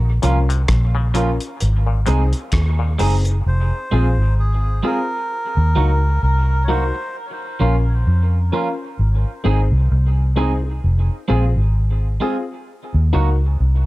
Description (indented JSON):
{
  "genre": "dub reggae",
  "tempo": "65 BPM",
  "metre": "4/4",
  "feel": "swing 57% on 16ths",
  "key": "F phrygian",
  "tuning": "A4 = 440 Hz",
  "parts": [
    { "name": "vintage muted fingered electric bass", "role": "bass", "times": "0.0-13.9 s", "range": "F1 to F2", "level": "-16 LUFS", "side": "equal", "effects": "none" },
    { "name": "clean electric guitar", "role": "accompaniment", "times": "0.2-13.3 s", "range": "F3 to Ab4", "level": "-26 LUFS", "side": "right 5 dB", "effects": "dub echo" },
    { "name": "muted clav", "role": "arpeggios", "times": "0.2-3.2 s", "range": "Ab2 to Db3", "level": "-33 LUFS", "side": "left 6 dB", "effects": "auto-wah, dub echo" },
    { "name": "dark baby grand piano", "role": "stabs", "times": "0.2-13.3 s", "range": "C4 to Bb4", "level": "-27 LUFS", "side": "left 4 dB", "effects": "dub echo" },
    { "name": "cloth-damped thuddy drum kit", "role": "drums", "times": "0.2-3.4 s", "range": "hi-hat, kick drum, rim click", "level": "-23 LUFS", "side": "equal", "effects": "none" },
    { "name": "melodica", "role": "melody", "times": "3.5-7.2 s", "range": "Ab4 to Db5", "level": "-26 LUFS", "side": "right 1 dB", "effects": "dub echo" }
  ],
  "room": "little or no reverb",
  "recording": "dark, warm production",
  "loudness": "-16 LUFS",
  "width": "side -18 dB against mid",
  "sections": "0.0-3.4 A section; 3.4-13.9 B section",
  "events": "break 0.0-3.4",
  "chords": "0.0 Bbm; 1.6 Ab; 3.4 Fm; 5.3 Ebm; 7.1 Bbm; 9.0 Ab; 10.8 Fm; 12.7 Ebm"
}